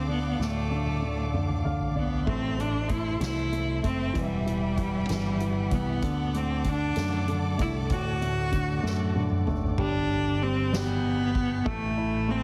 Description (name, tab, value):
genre	six-eight pop ballad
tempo	64 BPM (dotted quarters)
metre	6/8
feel	straight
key	G major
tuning	A4 = 440 Hz
part	bright cello	melody	0.0-12.4 s	G3 to F#4	-32 LUFS	equal	tape echo
part	warm grand piano	accompaniment	0.0-12.4 s	A2 to F5	-35 LUFS	equal	none
part	warm studio string section	sustained chords	0.0-9.7 s	G4 to D6	-40 LUFS	equal	none
part	fingered electric bass	bass	0.0-12.4 s	E1 to F#2	-32 LUFS	equal	none
part	soft-mallet drum kit	drums	0.4-12.4 s	crash cymbal, hi-hat, kick drum, ride cymbal, snare drum, toms	-35 LUFS	equal	none
room	light reverb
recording	heavily compressed radio sound, multiband compression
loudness	-28 LUFS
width	mono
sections	0.0-2.3 A section; 2.3-9.8 B section; 9.8-12.4 C section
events	drum fill 0.4-2.3, 8.8-9.8; grand piano fill 1.3-2.3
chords	0.0 Dm; 2.3 Am; 4.2 Emadd9; 6.0 D; 9.8 G5; 11.7 A5